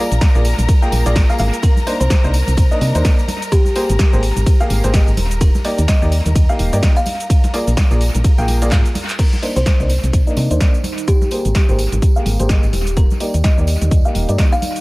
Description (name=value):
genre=piano house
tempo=127 BPM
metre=4/4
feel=swing 58% on 16ths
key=Eb major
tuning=A4 = 440 Hz
part: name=warm studio string section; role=sustained chords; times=0.0-9.2 s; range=Bb4 to Bb5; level=-28 LUFS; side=left 2 dB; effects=sidechain pumping
part: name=clear upright piano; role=riff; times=0.0-14.5 s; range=Bb3 to G5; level=-22 LUFS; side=equal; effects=sidechain pumping, low-pass filter, dub echo
part: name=solid FM bass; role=bass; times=0.1-14.4 s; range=Eb1 to C3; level=-16 LUFS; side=equal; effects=sidechain pumping
part: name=punchy analog drum machine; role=drums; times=0.1-14.8 s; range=cabasa, crash cymbal, handclaps, hi-hat, ride cymbal, snare drum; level=-25 LUFS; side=equal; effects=dub echo
part: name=tambourine and congas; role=percussion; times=0.1-14.8 s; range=none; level=-29 LUFS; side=right 2 dB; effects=dub echo
part: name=kalimba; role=melody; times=0.2-14.7 s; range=G4 to F5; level=-26 LUFS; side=left 1 dB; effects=dub echo
part: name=electronic kick drum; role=drums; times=0.2-14.5 s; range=none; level=-14 LUFS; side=equal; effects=none
part: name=deep dark ambient pad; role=texture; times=10.1-14.8 s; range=Eb4 to Bb5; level=-29 LUFS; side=equal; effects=chorus, built-in reverb, sidechain pumping
room=small room ambience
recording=echo-heavy mix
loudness=-13 LUFS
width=side -22 dB against mid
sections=0.0-9.2 A section; 9.2-14.8 B section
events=drop 0.0-9.2; drum fill 8.7-9.2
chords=0.0 Bb7; 1.6 Cm9; 3.5 Abmaj9; 5.4 Ebmaj7; 7.3 Bb7; 9.2 Cm9; 11.1 Abmaj9; 13.0 Ebmaj7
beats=0.21 0.69 1.16 | 1.63 2.10 2.58 3.05 | 3.52 3.99 4.46 4.94 | 5.41 5.88 6.36 6.83 | 7.30 7.77 8.24 8.72 | 9.19 9.66 10.13 10.61 | 11.08 11.55 12.02 12.50 | 12.97 13.44 13.91 14.39